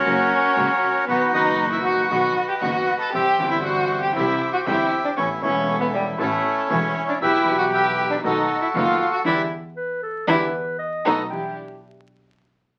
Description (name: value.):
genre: tango.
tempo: 118 BPM.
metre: 4/4.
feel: rubato.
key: E minor.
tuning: A4 = 440 Hz.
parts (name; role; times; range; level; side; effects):
bandoneon; melody; 0.0-11.2 s; C#4 to A5; -24 LUFS; equal; none.
warm violin; second line; 0.0-11.2 s; G3 to A4; -25 LUFS; equal; none.
clear grand piano; accompaniment; 0.0-11.5 s; E1 to G4; -32 LUFS; equal; none.
warm studio string section; stabs; 0.0-11.5 s; G3 to A4; -34 LUFS; equal; none.
dark double bass; bass; 0.0-11.5 s; E1 to E2; -34 LUFS; equal; none.
mellow clarinet; second line; 0.1-1.0, 9.8-11.5 s; F#4 to G5; -31 LUFS; equal; none.
room: wet studio ambience, RT60 0.4 s.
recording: very old 78 rpm record, vinyl crackle.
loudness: -21 LUFS.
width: mono.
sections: 0.0-11.3 A section; 11.3-12.8 B section.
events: band accent 9.3-11.3.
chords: 0.0 F#; 1.1 B; 3.1 C; 5.2 Aadd9; 7.2 Em/B; 8.2 B7; 9.3 Em7; 10.8 B7; 11.3 Em7.